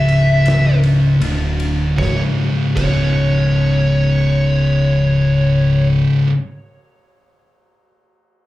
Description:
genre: stoner and doom metal.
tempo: 77 BPM.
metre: 4/4.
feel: straight.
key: unclear.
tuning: A4 = 441 Hz.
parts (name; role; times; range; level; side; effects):
fuzz lead guitar; melody; 0.0-5.9 s; C#5 to E5; -22 LUFS; equal; distortion, tape echo.
thick fuzz guitar; riff; 0.0-6.3 s; C#2 to D3; -16 LUFS; left 2 dB; distortion.
thick fuzz guitar; riff; 0.0-6.3 s; C#2 to D3; -18 LUFS; right 2 dB; distortion.
growling picked electric bass; bass; 0.0-6.0 s; C#1 to D1; -22 LUFS; equal; overdrive.
oversized low-tuned drum kit; drums; 0.1-3.0 s; crash cymbal, kick drum, ride cymbal, snare drum; -25 LUFS; equal; none.
room: little or no reverb.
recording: live gig heard through the venue's PA, club reverb.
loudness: -13 LUFS.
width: side -16 dB against mid.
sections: 0.0-2.0 A section; 2.0-5.1 B section.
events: slowing down 0.0-2.0.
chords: 0.0 C#m; 2.0 C#5.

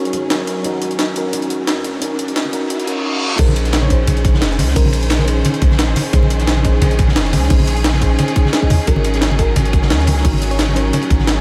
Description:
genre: liquid drum and bass.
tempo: 175 BPM.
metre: 4/4.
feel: swing 54% on 16ths.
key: Bb minor.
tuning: A4 = 440 Hz.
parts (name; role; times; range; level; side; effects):
bell-like FM electric piano; melody; 0.0-0.1, 3.4-5.2, 8.9-11.0 s; Bb4 to Db5; -32 LUFS; equal; none.
mellow FM electric piano; accompaniment; 0.0-11.4 s; Db4 to Eb5; -24 LUFS; equal; chorus, phaser, diffuse ambient delay.
warm studio string section; sustained chords; 0.0-11.4 s; Eb3 to C5; -28 LUFS; equal; sidechain pumping.
riser and reverse cymbal; sound effects; 1.3-3.4 s; none; -29 LUFS; equal; none.
long sustained 808-style bass; bass; 0.1-11.4 s; F1 to Eb2; -19 LUFS; equal; none.
jungle sampler-style drum kit; drums; 0.1-11.3 s; crash cymbal, hi-hat, snare drum; -24 LUFS; equal; overdrive.
congas; percussion; 2.4-11.3 s; none; -24 LUFS; equal; none.
crunchy breakbeat drum kit; drums; 3.4-11.4 s; hi-hat, ride cymbal, snare drum; -29 LUFS; equal; high-pass filter on cymbals, high-pass filter on hats, high-pass filter on snare, high-pass filter on room.
electronic kick drum; drums; 3.4-11.2 s; none; -18 LUFS; equal; none.
room: moderate huge ambient reverb, RT60 6.2 s.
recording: dreamy mix soaked in reverb, high-pass filter.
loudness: -16 LUFS.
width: mono.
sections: 0.0-3.4 A section; 3.4-11.4 B section.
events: build-up 0.0-3.4; filter sweep on FM electric piano 0.0-3.4; filter sweep 0.0-3.4; reverse cymbal 2.7-3.4; drop 3.4-11.4.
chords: 0.0 Ab7sus4; 3.4 Bbm11; 8.9 Ab7sus4.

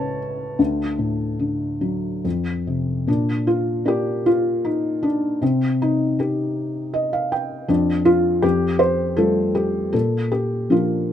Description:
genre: classical, lyrical solo piano.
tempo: 68-81 BPM.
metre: 3/4.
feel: rubato.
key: Bb major from 3.1 s.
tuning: A4 = 440 Hz.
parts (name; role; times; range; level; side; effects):
felt-muted upright piano; solo; 0.0-11.1 s; C#2 to A5; -18 LUFS; left 1 dB; none.
room: light reverb.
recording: close, detailed microphones.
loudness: -18 LUFS.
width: side -10 dB against mid.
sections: 0.0-3.1 A section; 3.1-11.1 B section.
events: felt piano fill 6.6-7.7.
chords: 0.0 A/C#; 0.6 D; 2.3 F5; 3.1 Bb; 5.4 Cm; 7.7 N.C.; 8.4 Fadd9; 9.9 Bb.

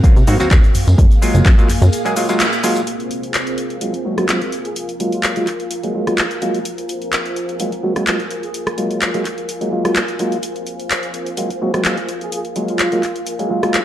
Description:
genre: filtered disco house.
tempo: 127 BPM.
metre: 4/4.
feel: swing 54% on 16ths.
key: Ab mixolydian.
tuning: A4 = 440 Hz.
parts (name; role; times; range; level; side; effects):
clav; accompaniment; 0.0-13.8 s; Gb3 to Ab4; -20 LUFS; equal; phaser, vintage 12-bit sampler grit, sidechain pumping, low-pass filter.
string machine, full ensemble; sustained chords; 0.0-13.8 s; Bb3 to Ab5; -24 LUFS; equal; ensemble chorus, vintage 12-bit sampler grit, sidechain pumping, low-pass filter.
plucky analog bass; bass; 0.0-1.9 s; Gb1 to C3; -13 LUFS; equal; sidechain pumping, low-pass filter.
electronic kick drum; drums; 0.0-1.6 s; none; -11 LUFS; equal; studio reverb.
house drum kit; drums; 0.0-13.8 s; handclaps, hi-hat, rim click, shaker; -21 LUFS; equal; sidechain pumping on hats, studio reverb, sidechain pumping on perc.
tambourine; percussion; 0.0-2.8 s; none; -36 LUFS; right 1 dB; sidechain pumping on perc, low-pass filter on perc.
clear horn section; melody; 4.7-5.6, 8.4-8.6, 12.2-13.2 s; F4 to Ab4; -26 LUFS; equal; sidechain pumping, low-pass filter, digital delay.
room: moderate echo chamber reverb, RT60 1.6 s.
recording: dark, warm production.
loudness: -15 LUFS.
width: side -12 dB against mid.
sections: 0.0-2.9 A section; 2.9-13.8 B section.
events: break 1.9-2.9; band accent 2.4; filter sweep 2.9-13.8.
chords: 0.0 Ab13 (rootless); 0.7 Gbmaj9; 2.9 Ab13; 4.5 Gbmaj9; 6.7 Ab13; 8.3 Gbmaj9; 10.4 Ab13; 12.1 Gbmaj9.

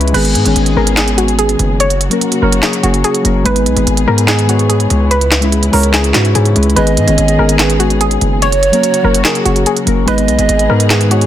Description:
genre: hip hop, trap.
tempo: 145 BPM.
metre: 4/4.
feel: half-time.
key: G# minor.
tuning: A4 = 440 Hz.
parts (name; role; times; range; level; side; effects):
soft electric-piano-like synth keys; accompaniment; 0.0-11.3 s; D#3 to C#5; -15 LUFS; left 2 dB; chorus, low-pass filter.
dark studio string section; sustained chords; 0.0-11.3 s; C#3 to G#4; -22 LUFS; left 2 dB; none.
hard-hitting 808-style bass; bass; 0.0-11.3 s; F#1 to G#2; -14 LUFS; equal; none.
trap drum kit; drums; 0.0-11.3 s; crash cymbal, handclaps, hi-hat, snare drum; -16 LUFS; right 2 dB; none.
soft round pluck; melody; 0.1-11.3 s; F#4 to C#5; -18 LUFS; equal; chorus, low-pass filter, digital delay.
mellow polished pan flute; second line; 6.8-11.3 s; F#4 to D#5; -16 LUFS; right 5 dB; digital delay.
room: light reverb, digital ambience.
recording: dense, heavily limited modern master.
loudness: -9 LUFS.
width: side -11 dB against mid.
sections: 0.1-11.3 A section.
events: none.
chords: 0.1 G#m; 1.8 F#; 3.5 G#m; 5.1 C#m7; 6.8 G#m; 8.4 F#; 10.1 G#m.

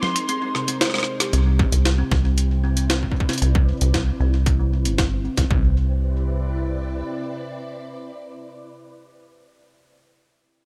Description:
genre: IDM.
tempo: 115 BPM.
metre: 4/4.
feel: straight.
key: C major.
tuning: A4 = 443 Hz.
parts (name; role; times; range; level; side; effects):
warbly lo-fi synth keys; melody; 0.0-0.8 s; C6; -30 LUFS; equal; chorus, delay.
soft string machine; sustained chords; 0.0-9.9 s; C3 to D5; -35 LUFS; equal; phaser, ensemble chorus, sidechain pumping.
jungle sampler-style drum kit; drums; 0.0-5.5 s; finger snaps, hi-hat, rim click, snare drum, toms; -27 LUFS; equal; overdrive, delay.
kalimba; arpeggios; 0.3-5.7 s; C3 to C5; -33 LUFS; equal; low-pass filter, delay.
deep acid bass; bass; 1.3-7.0 s; G1 to C2; -22 LUFS; equal; none.
electronic kick drum; drums; 1.6-5.6 s; none; -24 LUFS; equal; distortion.
room: digital ambience.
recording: none.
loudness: -21 LUFS.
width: mono.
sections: 0.0-1.3 A section; 1.3-5.5 B section; 5.5-9.7 C section.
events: break 0.0-1.3; drum fill 0.5-1.3; band accent 1.2; filter sweep on string machine 1.3-5.5; filter sweep on kalimba 1.3-5.5.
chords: 0.0 Abmaj9; 1.3 Cmaj9.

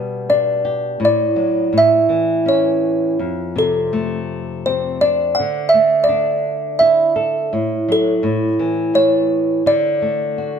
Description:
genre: children's music, lullaby.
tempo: 84 BPM.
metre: 3/4.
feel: rubato.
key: unclear.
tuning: A4 = 440 Hz.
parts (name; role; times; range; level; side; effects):
flamenco guitar; accompaniment; 0.0-10.6 s; F2 to A4; -20 LUFS; equal; none.
music box; melody; 0.3-10.6 s; A4 to F#5; -16 LUFS; right 1 dB; none.
room: moderate recital hall reverb, RT60 1.4 s.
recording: dark, warm production.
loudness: -14 LUFS.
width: side -7 dB against mid.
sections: 0.0-10.6 A section.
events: nylon-string guitar fill 10.4.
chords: 0.0 G/B; 1.0 D/A; 1.7 A; 3.2 F6; 5.4 Dsus2; 7.5 F#m/A; 8.2 A; 9.7 D.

